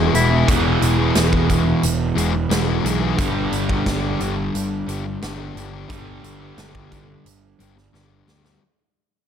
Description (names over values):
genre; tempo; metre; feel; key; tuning
classic rock; 88 BPM; 4/4; straight; unclear; A4 = 438 Hz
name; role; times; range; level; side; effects
clean lap steel guitar; second line; 0.0-0.5 s; C#4 to E4; -23 LUFS; left 3 dB; slapback echo
crunchy overdriven guitar; riff; 0.0-8.6 s; E2 to G3; -23 LUFS; right 8 dB; none
sludgy distorted guitar; riff; 0.0-8.6 s; E2 to G#4; -23 LUFS; left 9 dB; overdrive
fuzz picked electric bass; bass; 0.0-8.6 s; E1 to D2; -24 LUFS; equal; overdrive
big rock drum kit; drums; 0.1-8.6 s; hi-hat, kick drum, snare drum; -24 LUFS; equal; none
room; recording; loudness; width
studio reverb; none; -17 LUFS; side -8 dB against mid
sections
0.0-8.6 A section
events
fade-out 0.0-8.6; drum fill 7.9-8.6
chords
0.0 E; 3.2 G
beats
| 0.48 1.16 1.83 2.51 | 3.18 3.86 4.54 5.22 | 5.90 6.58 7.25 7.93